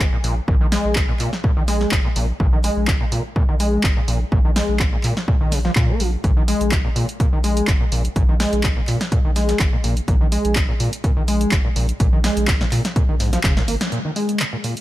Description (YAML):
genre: acid house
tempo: 125 BPM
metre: 4/4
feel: swing 54% on 16ths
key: unclear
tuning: A4 = 440 Hz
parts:
  - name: overdriven acid bass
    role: riff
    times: 0.0-14.7 s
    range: Ab2 to Bb3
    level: -23 LUFS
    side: equal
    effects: distortion, lush chorus, sidechain pumping, dub echo
  - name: saturated sub bass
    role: bass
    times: 0.0-13.8 s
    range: F1 to Bb2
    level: -22 LUFS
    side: equal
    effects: sidechain pumping
  - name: electronic kick drum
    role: drums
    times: 0.0-13.5 s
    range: none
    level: -19 LUFS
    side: equal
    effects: none
  - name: punchy analog drum machine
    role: drums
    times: 0.0-14.8 s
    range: handclaps, hi-hat, snare drum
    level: -24 LUFS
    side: equal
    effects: none
room: digital ambience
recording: none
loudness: -16 LUFS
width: side -15 dB against mid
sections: 0.0-13.9 A section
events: drum fill 13.4-13.9; band accent 13.8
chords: 0.0 Bb7(no3)